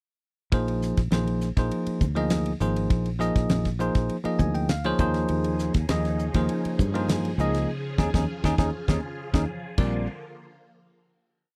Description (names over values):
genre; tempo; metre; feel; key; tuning
electric jazz fusion; 100 BPM; 4/4; straight; unclear; A4 = 440 Hz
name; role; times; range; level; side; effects
bell-like tine electric piano; accompaniment; 0.5-10.1 s; F3 to Ab5; -29 LUFS; equal; none
fingered electric bass; bass; 0.5-10.1 s; Ab1 to G2; -30 LUFS; equal; none
damped 70s drum kit; drums; 0.5-9.9 s; crash cymbal, hi-hat, kick drum, ride cymbal, snare drum; -28 LUFS; equal; none
congas; percussion; 0.5-10.1 s; none; -36 LUFS; equal; none
phased string machine; sustained chords; 5.3-10.1 s; Db3 to Ab4; -38 LUFS; equal; ensemble chorus, phaser
room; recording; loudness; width
little or no reverb; dry, close 1970s-style studio recording; -26 LUFS; mono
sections
0.5-10.1 groove; 10.1-11.6 final hit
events
tine electric piano fill 4.1-5.3; drum fill 7.7-10.1; band accent 7.7-10.1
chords
0.5 Bb9sus4; 5.0 Eb9sus4; 9.8 Bb; 10.1 N.C.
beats
| 0.53 1.12 1.72 2.31 | 2.91 3.51 4.10 4.70 | 5.30 5.89 6.49 7.09 | 7.69 8.29 8.89 9.49